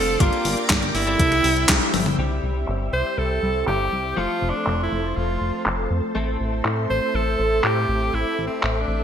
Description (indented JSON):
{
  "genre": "italo disco",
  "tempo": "121 BPM",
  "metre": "4/4",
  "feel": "straight",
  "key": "unclear",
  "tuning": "A4 = 440 Hz",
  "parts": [
    { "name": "bright alto saxophone", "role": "melody", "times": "0.0-9.0 s", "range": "C4 to C5", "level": "-23 LUFS", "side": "right 2 dB", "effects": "digital delay" },
    { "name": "string machine, full ensemble", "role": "sustained chords", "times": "0.0-9.0 s", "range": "A4 to E6", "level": "-29 LUFS", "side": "equal", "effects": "ensemble chorus" },
    { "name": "direct-recorded clean electric guitar", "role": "stabs", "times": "0.0-9.0 s", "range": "F3 to C5", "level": "-30 LUFS", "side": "left 2 dB", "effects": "analog chorus" },
    { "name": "chorused synth bass", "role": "bass", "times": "0.0-9.0 s", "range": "F1 to A2", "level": "-25 LUFS", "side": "equal", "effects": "none" },
    { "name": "clean 12-bit digital drum machine", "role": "drums", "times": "0.2-8.7 s", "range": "handclaps, hi-hat, snare drum, toms", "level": "-23 LUFS", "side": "left 1 dB", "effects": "overdrive, low-pass filter on hats, low-pass filter on snare, low-pass filter on toms, low-pass filter on room, gated reverb" },
    { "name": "electronic kick drum", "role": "drums", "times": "0.2-1.8 s", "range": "none", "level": "-22 LUFS", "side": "equal", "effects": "overdrive" }
  ],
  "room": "moderate plate reverb, RT60 2.1 s",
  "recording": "bright 1980s-style digital production",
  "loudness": "-19 LUFS",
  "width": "side -8 dB against mid",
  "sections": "0.0-2.2 A section; 2.2-9.0 B section",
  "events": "band accent 1.7; drum fill 1.9; filter sweep on drum 2.2-9.0",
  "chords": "0.2 Gm; 1.2 C; 4.2 F; 6.2 Am",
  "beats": "| 0.20 0.70 1.20 1.69 | 2.19 2.68 3.18 3.67 | 4.17 4.67 5.16 5.66 | 6.15 6.65 7.14 7.64 | 8.14 8.63"
}